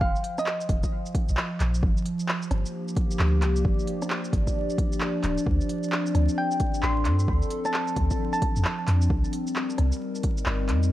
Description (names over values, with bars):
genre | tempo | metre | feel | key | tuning
future garage | 132 BPM | 4/4 | swing 63% on 16ths | unclear | A4 = 440 Hz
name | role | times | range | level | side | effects
thumb-piano-like synth pluck | melody | 0.0-0.8, 6.4-8.6 s | Eb5 to C6 | -30 LUFS | right 1 dB | chorus, tape echo
warbly tape-like pad | sustained chords | 0.0-10.9 s | F3 to Eb5 | -29 LUFS | left 1 dB | chorus, built-in reverb, vintage 12-bit sampler grit, sidechain pumping
soft 808-style bass | bass | 0.0-10.9 s | D1 to G2 | -24 LUFS | equal | sidechain pumping
electronic kick drum | drums | 0.0-10.4 s | none | -26 LUFS | equal | overdrive, vintage 12-bit sampler grit
organic electronic drum kit | drums | 0.2-10.9 s | handclaps, hi-hat, rim click, shaker | -31 LUFS | equal | vintage 12-bit sampler grit
room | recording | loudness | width
light reverb | vinyl crackle | -23 LUFS | side -14 dB against mid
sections
0.0-10.9 A section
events
none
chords
0.0 F7sus4; 1.8 Gm7; 5.5 Dm7; 9.1 Cm7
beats
| 0.01 0.47 0.92 1.37 | 1.83 2.28 2.74 3.19 | 3.65 4.10 4.56 5.01 | 5.46 5.92 6.37 6.83 | 7.28 7.74 8.19 8.65 | 9.10 9.56 10.01 10.46 | 10.92